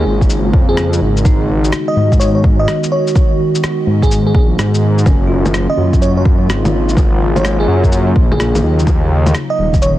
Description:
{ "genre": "future garage", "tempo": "126 BPM", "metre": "4/4", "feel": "swing 65% on 16ths", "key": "G# dorian", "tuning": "A4 = 440 Hz", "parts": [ { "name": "bell-like FM electric piano", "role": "melody", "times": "0.0-9.9 s", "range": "G#4 to D#5", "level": "-20 LUFS", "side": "equal", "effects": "chorus, tremolo, cassette tape, tape echo" }, { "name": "bell-like tine electric piano", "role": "accompaniment", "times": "0.0-8.9 s", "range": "A#3 to E#4", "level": "-25 LUFS", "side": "right 1 dB", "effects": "phaser, sidechain pumping, tape echo" }, { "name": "warbly tape-like pad", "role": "sustained chords", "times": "0.0-10.0 s", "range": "C#3 to F#4", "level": "-20 LUFS", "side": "equal", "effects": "chorus, built-in reverb, sidechain pumping" }, { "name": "swelling detuned saw bass", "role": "bass", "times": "0.0-10.0 s", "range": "D#1 to G#2", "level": "-14 LUFS", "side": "equal", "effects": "sidechain pumping" }, { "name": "electronic kick drum", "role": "drums", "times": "0.2-9.8 s", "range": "none", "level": "-12 LUFS", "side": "equal", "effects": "overdrive, studio reverb" }, { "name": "electronic shaker, rim click and bongos", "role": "drums", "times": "0.2-9.9 s", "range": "none", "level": "-21 LUFS", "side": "left 1 dB", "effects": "soft clipping on snare, studio reverb" } ], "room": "little or no reverb", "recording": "dense, heavily limited modern master, cassette tape", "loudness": "-10 LUFS", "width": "side -14 dB against mid", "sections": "0.0-10.0 A section", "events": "none", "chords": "0.0 C#; 1.3 G#m7; 5.1 F#maj7; 8.9 D#m7" }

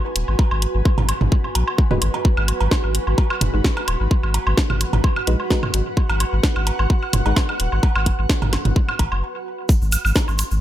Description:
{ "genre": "minimal techno", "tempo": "129 BPM", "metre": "4/4", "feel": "swing 54% on 16ths", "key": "G# minor", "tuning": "A4 = 440 Hz", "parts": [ { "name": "granular cloud pad", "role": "texture", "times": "0.0-10.6 s", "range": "F#4 to G#5", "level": "-28 LUFS", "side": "right 1 dB", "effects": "built-in reverb, sidechain pumping" }, { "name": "saturated sub bass", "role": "bass", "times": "0.2-10.6 s", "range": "D#1 to A#1", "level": "-20 LUFS", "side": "equal", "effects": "sidechain pumping" }, { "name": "garage drum kit", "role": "drums", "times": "0.2-10.5 s", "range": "hi-hat, snare drum", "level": "-24 LUFS", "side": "equal", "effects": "none" }, { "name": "electronic woodblock, cowbell and toms", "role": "percussion", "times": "0.3-10.5 s", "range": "none", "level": "-25 LUFS", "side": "right 2 dB", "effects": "overdrive, tape echo" }, { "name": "electronic kick drum", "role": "drums", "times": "0.4-10.3 s", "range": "none", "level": "-18 LUFS", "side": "equal", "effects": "none" }, { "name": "filtered dub chord stab", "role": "stabs", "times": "1.9-7.3 s", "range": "G#3 to B4", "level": "-29 LUFS", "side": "left 2 dB", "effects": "chorus, tape echo" }, { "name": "tube shaker", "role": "percussion", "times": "9.7-10.6 s", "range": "none", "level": "-29 LUFS", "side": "right 3 dB", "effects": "none" } ], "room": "little or no reverb", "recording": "echo-heavy mix", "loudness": "-17 LUFS", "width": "side -12 dB against mid", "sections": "0.0-9.7 A section", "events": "fade-in on ambient pad 0.0-9.7; stop 9.2-9.7", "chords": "0.0 G#m7; 9.7 N.C." }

